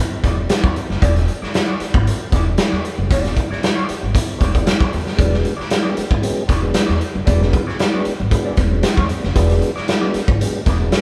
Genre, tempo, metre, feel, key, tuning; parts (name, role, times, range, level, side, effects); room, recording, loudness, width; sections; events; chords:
funk; 115 BPM; 4/4; straight; E mixolydian; A4 = 435 Hz
clean electric guitar; accompaniment; 0.2-11.0 s; F#4 to D5; -31 LUFS; equal; wah
upright bass; bass; 0.2-10.9 s; E1 to E2; -22 LUFS; equal
raw garage drum kit; drums; 0.2-11.0 s; hi-hat, kick drum, snare drum; -20 LUFS; equal
mellow tonewheel organ; stabs; 5.2-11.0 s; F#3 to D4; -26 LUFS; equal; chorus vibrato, slow rotary speaker
light reverb; band playing live in one room; -18 LUFS; mono
0.0-11.0 A section
0.0 E9